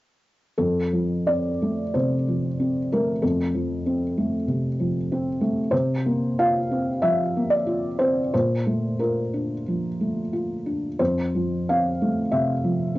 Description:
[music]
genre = neoclassical minimalist piano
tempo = 83-97 BPM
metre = 4/4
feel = rubato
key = F major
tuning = A4 = 440 Hz
[part]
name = felt-muted upright piano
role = solo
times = 0.6-13.0 s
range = F2 to F5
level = -21 LUFS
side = equal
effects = cassette tape
[sound]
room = moderate small room ambience, RT60 0.5 s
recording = home recording on cassette, nothing above 7.7 kHz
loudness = -21 LUFS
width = side -18 dB against mid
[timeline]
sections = 0.6-13.0 A section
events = none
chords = 0.6 F; 5.7 C7sus4; 8.3 Bbmaj7; 11.0 F

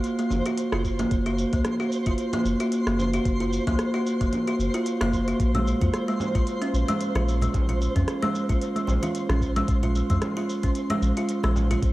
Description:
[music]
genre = organic downtempo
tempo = 112 BPM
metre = 4/4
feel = swing 56% on 16ths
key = unclear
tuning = A4 = 440 Hz
[part]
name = kalimba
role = arpeggios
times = 0.0-11.8 s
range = Ab3 to Gb4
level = -25 LUFS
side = equal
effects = low-pass filter, cassette tape, tape echo
[part]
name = organic electronic drum kit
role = drums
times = 0.0-11.9 s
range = congas, hi-hat, rim click, shaker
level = -34 LUFS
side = equal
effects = cassette tape
[part]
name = twinkling granular texture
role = texture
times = 0.0-11.9 s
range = C5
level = -34 LUFS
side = right 1 dB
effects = built-in reverb, cassette tape
[part]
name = round analog bass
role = bass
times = 0.3-11.9 s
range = Gb1 to F2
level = -25 LUFS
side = equal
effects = sidechain pumping
[part]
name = electronic kick drum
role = drums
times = 0.8-11.9 s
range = none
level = -27 LUFS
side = equal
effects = cassette tape
[part]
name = congas and bongos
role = percussion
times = 5.5-11.8 s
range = none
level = -36 LUFS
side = right 1 dB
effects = none
[sound]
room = light reverb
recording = home recording on cassette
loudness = -22 LUFS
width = side -17 dB against mid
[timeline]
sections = 0.0-11.9 A section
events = none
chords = 0.0 Gb; 5.4 Bb7(no3)

